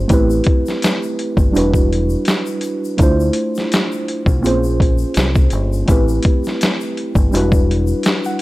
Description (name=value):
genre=lo-fi hip hop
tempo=83 BPM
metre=4/4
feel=swing 56% on 16ths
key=A minor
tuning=A4 = 440 Hz
part: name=muted felt-like synth keys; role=accompaniment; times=0.0-8.4 s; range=G3 to F#5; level=-18 LUFS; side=right 1 dB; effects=chorus, cassette tape, low-pass filter
part: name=deep dub fingered electric bass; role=bass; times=0.0-7.9 s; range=E1 to D2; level=-18 LUFS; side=equal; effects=none
part: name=boom bap sampler-style drum kit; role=drums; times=0.1-8.4 s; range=hi-hat, kick drum, snare drum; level=-16 LUFS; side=equal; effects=overdrive
part: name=egg shaker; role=percussion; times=0.1-8.4 s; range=none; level=-38 LUFS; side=left 10 dB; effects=none
room=light reverb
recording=none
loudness=-14 LUFS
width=side -18 dB against mid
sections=0.0-8.4 A section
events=none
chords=0.1 Am9; 1.5 Em9; 3.0 Dm9; 4.4 Bbm9; 5.9 Am9; 7.3 Em9